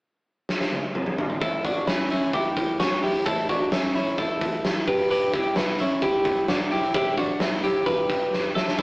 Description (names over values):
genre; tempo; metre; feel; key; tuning
jangly indie pop; 130 BPM; 4/4; straight; unclear; A4 = 440 Hz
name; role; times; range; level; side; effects
big rock drum kit; drums; 0.5-8.8 s; hi-hat, kick drum, snare drum, toms; -25 LUFS; equal; none
twelve-string electric guitar; arpeggios; 1.4-8.8 s; B3 to B4; -23 LUFS; equal; none
vintage muted fingered electric bass; bass; 1.4-8.8 s; E1 to A1; -40 LUFS; equal; none
room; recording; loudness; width
moderate stone room reverb, RT60 1.1 s; rough rehearsal-room recording, tube saturation, AM radio sound; -21 LUFS; side -38 dB against mid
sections
0.0-1.4 A section; 1.4-8.8 B section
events
drum fill 0.5-1.4, 8.3-8.8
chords
0.0 N.C.; 1.4 A7; 4.9 Em7; 8.6 A5